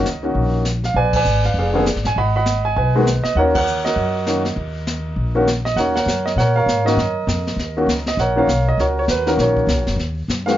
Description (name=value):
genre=jazz piano trio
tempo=199 BPM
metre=4/4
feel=swing 60% on 8ths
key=Eb minor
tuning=A4 = 445 Hz
part: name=clear concert grand piano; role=melody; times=0.0-10.6 s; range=D3 to Cb6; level=-18 LUFS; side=right 1 dB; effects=none
part: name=upright bass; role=bass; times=0.0-10.6 s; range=F1 to Bb2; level=-21 LUFS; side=left 1 dB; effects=none
part: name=jazz brush drum kit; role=drums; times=0.1-10.6 s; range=brushed snare drum, hi-hat, kick drum, ride cymbal, snare drum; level=-26 LUFS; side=left 2 dB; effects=none
room=moderate studio reverb, RT60 0.5 s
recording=nothing above 7.5 kHz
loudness=-16 LUFS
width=side -12 dB against mid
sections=0.0-5.8 A section; 5.8-10.6 A section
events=band accent 1.1, 3.5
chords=0.0 Ebm7; 1.0 Bb7b9; 2.2 Abm7; 3.4 Ebm7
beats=0.05 0.35 0.65 | 0.95 1.25 1.55 1.85 | 2.15 2.46 2.76 3.06 | 3.36 3.66 3.96 4.26 | 4.56 4.87 5.17 5.47 | 5.77 6.07 6.37 6.67 | 6.97 7.28 7.58 7.88 | 8.18 8.48 8.78 9.08 | 9.38 9.69 9.99 10.29